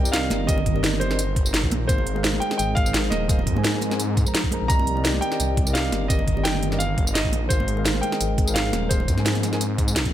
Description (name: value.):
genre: liquid drum and bass.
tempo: 171 BPM.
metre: 4/4.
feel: swing 53% on 16ths.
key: C minor.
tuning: A4 = 441 Hz.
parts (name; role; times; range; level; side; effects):
warm concert grand piano; melody; 0.0-9.9 s; C5 to Bb5; -28 LUFS; right 1 dB; ping-pong delay.
mellow tine electric piano; accompaniment; 0.0-9.6 s; Ab3 to Bb5; -29 LUFS; equal; medium stereo tremolo, tape echo.
glassy FM pad; sustained chords; 0.0-10.1 s; Eb3 to Bb4; -32 LUFS; equal; ensemble chorus, built-in reverb, sidechain pumping.
swelling detuned saw bass; bass; 0.0-10.1 s; Eb1 to Ab2; -25 LUFS; equal; none.
garage drum kit; drums; 0.1-10.1 s; hi-hat, snare drum, tambourine; -26 LUFS; equal; none.
congas; percussion; 0.3-9.5 s; none; -32 LUFS; right 2 dB; none.
electronic kick drum; drums; 0.5-10.1 s; none; -23 LUFS; equal; none.
room: light reverb, digital ambience.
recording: none.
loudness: -20 LUFS.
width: side -12 dB against mid.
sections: 0.0-10.1 A section.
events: none.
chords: 0.0 Cm9; 1.9 Ab69; 4.7 Cm9; 7.5 Ab69.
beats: 0.14 | 0.49 0.84 1.19 1.54 | 1.89 2.24 2.59 2.94 | 3.29 3.64 4.00 4.34 | 4.70 5.05 5.40 5.75 | 6.10 6.45 6.80 7.15 | 7.50 7.85 8.21 8.56 | 8.91 9.26 9.61 9.96.